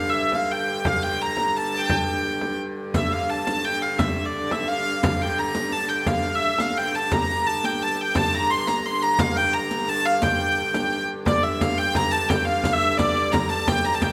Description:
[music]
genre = medieval dance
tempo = 173 BPM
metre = 3/4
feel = straight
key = G dorian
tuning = A4 = 442 Hz
[part]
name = bright hurdy-gurdy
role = melody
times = 0.0-14.1 s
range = D5 to C6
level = -25 LUFS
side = equal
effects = none
[part]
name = bright hurdy-gurdy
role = drone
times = 0.0-14.1 s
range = G2 to D3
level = -31 LUFS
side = equal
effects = none
[part]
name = frame drum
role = percussion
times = 0.3-14.1 s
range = none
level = -29 LUFS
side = equal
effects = none
[part]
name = riq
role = percussion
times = 2.9-14.1 s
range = none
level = -34 LUFS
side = equal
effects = none
[sound]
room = wet recital hall reverb, RT60 1.4 s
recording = none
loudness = -23 LUFS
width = mono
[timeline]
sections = 0.0-2.9 A section; 2.9-11.3 A section; 11.3-14.1 B section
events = none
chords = none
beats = 0.15 0.50 | 0.85 1.20 1.55 | 1.90 2.25 2.60 | 2.94 3.29 3.64 | 3.99 4.34 4.68 | 5.03 5.38 5.73 | 6.08 6.42 6.77 | 7.12 7.46 7.81 | 8.15 8.50 8.85 | 9.19 9.54 9.88 | 10.23 10.57 10.92 | 11.27 11.61 11.96 | 12.30 12.64 12.99 | 13.33 13.68 14.02

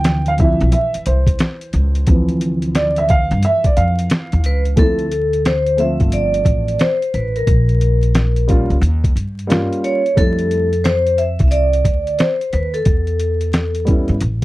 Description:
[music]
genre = hip hop, jazz-hop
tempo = 89 BPM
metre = 4/4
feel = swing 65% on 16ths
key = unclear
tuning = A4 = 441 Hz
[part]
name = dark concert grand piano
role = accompaniment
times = 0.0-14.1 s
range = E3 to G5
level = -19 LUFS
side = right 1 dB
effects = none
[part]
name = upright bass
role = bass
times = 0.0-14.4 s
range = G1 to G2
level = -17 LUFS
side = equal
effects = none
[part]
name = boom bap sampler-style drum kit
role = drums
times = 0.0-14.4 s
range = hi-hat, kick drum, snare drum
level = -17 LUFS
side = equal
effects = none
[part]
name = vibraphone with hard mallets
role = melody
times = 4.5-14.0 s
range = A4 to E5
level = -18 LUFS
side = equal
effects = none
[sound]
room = little or no reverb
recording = dry, close 1970s-style studio recording, vinyl crackle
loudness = -14 LUFS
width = side -18 dB against mid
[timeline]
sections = 0.0-4.8 A section; 4.8-14.4 B section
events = grand piano solo 0.0-4.8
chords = 0.0 Dm7; 7.5 Bbm; 8.8 Eb9; 10.2 Fmaj7; 12.9 Em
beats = 0.05 0.72 1.40 | 2.07 2.75 3.42 4.10 | 4.77 5.44 6.12 6.79 | 7.47 8.14 8.81 9.49 | 10.16 10.84 11.51 12.19 | 12.86 13.53 14.21

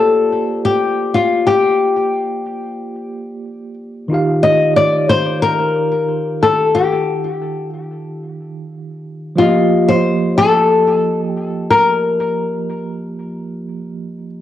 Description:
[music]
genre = chillout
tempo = 91 BPM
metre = 4/4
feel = straight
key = Bb major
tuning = A4 = 440 Hz
[part]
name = flamenco guitar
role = melody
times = 0.0-14.3 s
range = F4 to Eb5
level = -14 LUFS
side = left 3 dB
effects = analog delay
[part]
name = tine electric piano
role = accompaniment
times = 0.0-14.4 s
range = Eb3 to F5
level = -20 LUFS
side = right 3 dB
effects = medium stereo tremolo, auto-pan, cassette tape
[sound]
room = wet spring reverb, RT60 1.4 s, studio reverb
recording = home recording on cassette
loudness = -13 LUFS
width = side -12 dB against mid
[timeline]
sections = 0.0-14.4 A section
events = none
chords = 0.0 Bb69; 4.1 Ebadd9; 9.4 F7sus4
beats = 0.15 0.81 | 1.47 2.13 2.79 3.45 | 4.11 4.76 5.42 6.08 | 6.74 7.40 8.06 8.72 | 9.38 10.04 10.70 11.36 | 12.02 12.68 13.34 14.00

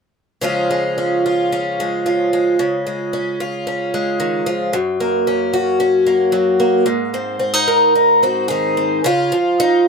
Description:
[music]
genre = folk, solo fingerstyle acoustic guitar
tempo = 112 BPM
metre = 4/4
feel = straight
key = Db major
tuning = A4 = 442 Hz
[part]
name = picked twelve-string acoustic guitar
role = solo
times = 0.4-9.9 s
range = Gb2 to Bb4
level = -14 LUFS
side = equal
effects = none
[sound]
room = light reverb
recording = close, detailed microphones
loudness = -15 LUFS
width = side -4 dB against mid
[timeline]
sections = 0.4-9.0 A section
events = none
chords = 0.4 Db; 2.6 Dbadd9; 4.7 Gb; 6.9 Abadd9; 9.0 Db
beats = | 0.42 0.96 1.51 2.05 | 2.58 3.12 3.66 4.19 | 4.73 5.26 5.79 6.33 | 6.86 7.40 7.94 8.48 | 9.03 9.58

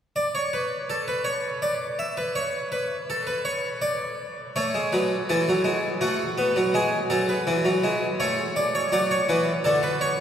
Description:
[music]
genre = classical, baroque-style two-part invention for harpsichord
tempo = 83 BPM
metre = 3/4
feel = straight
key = unclear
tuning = A4 = 443 Hz
[part]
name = harpsichord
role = solo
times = 0.2-10.2 s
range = D3 to E5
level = -22 LUFS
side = equal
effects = none
[sound]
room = wet cathedral reverb, RT60 5.8 s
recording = recorded in a church or concert hall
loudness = -22 LUFS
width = side -9 dB against mid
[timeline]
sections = 0.2-10.2 A section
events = none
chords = 0.2 N.C.; 4.6 A; 6.0 B5/A; 6.7 E; 8.2 A; 8.9 D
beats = | 0.17 0.90 1.64 | 2.37 3.10 3.83 | 4.55 5.28 6.00 | 6.73 7.45 8.18 | 8.90 9.62

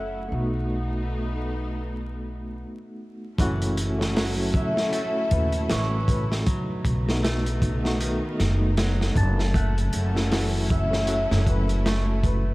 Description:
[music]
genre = trip hop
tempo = 78 BPM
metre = 4/4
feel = swing 58% on 16ths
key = F# dorian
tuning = A4 = 436 Hz
[part]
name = santur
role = melody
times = 0.0-12.5 s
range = B4 to A5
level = -32 LUFS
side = left 1 dB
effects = dub echo
[part]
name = barky tine electric piano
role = accompaniment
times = 0.0-12.5 s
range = A3 to F#4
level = -31 LUFS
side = equal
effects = tremolo, tape echo
[part]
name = rich symphonic string section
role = sustained chords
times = 0.0-12.5 s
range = F#3 to A4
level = -36 LUFS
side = left 1 dB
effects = none
[part]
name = upright bass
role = bass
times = 0.0-12.5 s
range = F#1 to D#2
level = -25 LUFS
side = equal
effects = none
[part]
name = semi-hollow electric guitar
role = arpeggios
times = 3.4-12.5 s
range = D#3 to A3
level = -34 LUFS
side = right 2 dB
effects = vintage 12-bit sampler grit, dub echo
[part]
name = crunchy breakbeat drum kit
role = drums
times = 3.4-12.4 s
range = hi-hat, kick drum, snare drum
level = -26 LUFS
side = equal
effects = none
[sound]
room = little or no reverb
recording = vinyl crackle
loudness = -22 LUFS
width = side -20 dB against mid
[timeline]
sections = 0.0-3.4 A section; 3.4-12.5 B section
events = stop 2.6-3.4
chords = 0.3 B7; 3.4 F#m7; 6.5 B7; 9.5 F#m7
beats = | 0.31 1.08 1.85 2.62 | 3.39 4.16 4.93 5.70 | 6.46 7.23 8.00 8.77 | 9.54 10.31 11.08 11.85

